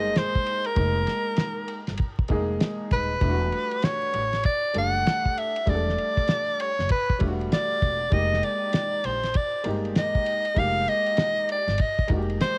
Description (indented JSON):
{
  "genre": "hip hop, jazz-hop",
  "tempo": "98 BPM",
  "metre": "4/4",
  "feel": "swing 63% on 16ths",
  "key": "F dorian",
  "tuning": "A4 = 440 Hz",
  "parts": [
    { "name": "bright soprano saxophone", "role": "melody", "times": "0.0-12.6 s", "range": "Bb4 to F#5", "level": "-28 LUFS", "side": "equal", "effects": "cassette tape" },
    { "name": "clear upright piano", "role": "accompaniment", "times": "0.0-12.6 s", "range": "G3 to Bb4", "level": "-34 LUFS", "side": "equal", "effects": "cassette tape" },
    { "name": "upright bass", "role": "bass", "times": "0.0-12.4 s", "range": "Eb1 to Bb1", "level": "-31 LUFS", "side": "equal", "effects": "none" },
    { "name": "cloth-damped thuddy drum kit", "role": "drums", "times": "0.2-12.6 s", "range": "hi-hat, kick drum, ride cymbal, snare drum", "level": "-29 LUFS", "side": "equal", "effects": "cassette tape" }
  ],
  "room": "light reverb",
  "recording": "home recording on cassette, vinyl crackle",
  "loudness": "-25 LUFS",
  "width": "mono",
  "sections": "0.0-12.6 A section",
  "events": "none",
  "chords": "0.0 Fm11; 3.2 Em11; 8.1 Fm11"
}